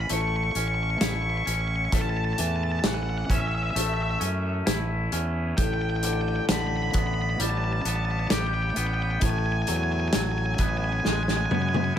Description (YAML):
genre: post-rock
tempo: 66 BPM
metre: 4/4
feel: straight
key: A major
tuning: A4 = 441 Hz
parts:
  - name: octave-fuzz lead guitar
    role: melody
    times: 0.0-11.9 s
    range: E5 to C#6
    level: -30 LUFS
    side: right 1 dB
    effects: distortion, tape echo
  - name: twangy electric guitar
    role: arpeggios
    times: 0.0-12.0 s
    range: A2 to G4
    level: -31 LUFS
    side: left 2 dB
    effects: tape echo
  - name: fuzz fingered electric bass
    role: bass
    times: 0.0-11.9 s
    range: A1 to F#2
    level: -27 LUFS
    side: equal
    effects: overdrive
  - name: loose indie drum kit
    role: drums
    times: 0.1-12.0 s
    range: hi-hat, kick drum, snare drum, toms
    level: -27 LUFS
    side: equal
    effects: none
room: light reverb, studio ambience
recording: none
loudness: -23 LUFS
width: side -9 dB against mid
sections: 0.0-12.0 A section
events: drum fill 11.1-12.0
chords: 0.0 A; 5.6 G/A; 9.2 Eadd9/A